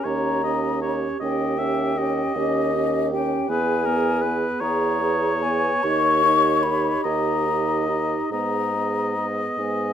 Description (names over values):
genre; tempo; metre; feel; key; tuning
classical, slow romantic movement for wind quintet; 47-54 BPM (dotted quarters); 12/8; rubato; unclear; A4 = 440 Hz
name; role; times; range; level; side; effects
mellow hollow concert flute; melody; 0.0-9.9 s; D#5 to C#6; -25 LUFS; left 8 dB; none
warm oboe; second line; 0.0-9.9 s; A#4 to E5; -26 LUFS; equal; none
mellow clarinet; accompaniment; 0.0-9.9 s; G4 to G#4; -29 LUFS; right 7 dB; none
warm French horn; accompaniment; 0.0-9.9 s; B3 to D#4; -28 LUFS; right 2 dB; none
mellow bassoon; bass; 0.0-9.9 s; D#2 to G#2; -27 LUFS; right 3 dB; none
room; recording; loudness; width
light reverb; close, detailed microphones; -20 LUFS; side -9 dB against mid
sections
0.0-9.9 A section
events
none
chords
0.0 D#7; 3.5 E; 5.8 D#7; 8.3 G#m